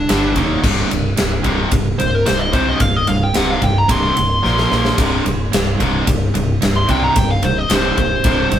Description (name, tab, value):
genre	hard rock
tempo	110 BPM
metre	4/4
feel	straight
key	C minor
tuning	A4 = 440 Hz
part	dark smooth lead guitar	melody	0.0-8.6 s	D4 to C6	-18 LUFS	equal	overdrive
part	overdriven electric guitar	riff	0.0-8.6 s	C2 to Bb3	-20 LUFS	right 3 dB	none
part	tight distorted guitar	riff	0.0-8.6 s	C2 to Bb3	-23 LUFS	left 5 dB	distortion
part	growling fingered electric bass	bass	0.0-8.6 s	C1 to C2	-22 LUFS	equal	overdrive
part	huge arena drum kit	drums	0.1-8.6 s	crash cymbal, kick drum, ride cymbal, snare drum	-18 LUFS	equal	none
room	moderate stone room reverb, RT60 1.3 s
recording	band playing live in one room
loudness	-14 LUFS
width	side -10 dB against mid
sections	0.0-8.6 A section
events	lead electric guitar solo 0.0-8.6; drum fill 4.4-5.0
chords	0.1 G5; 0.4 Eb5; 0.6 C5; 4.4 Bb5; 5.0 C5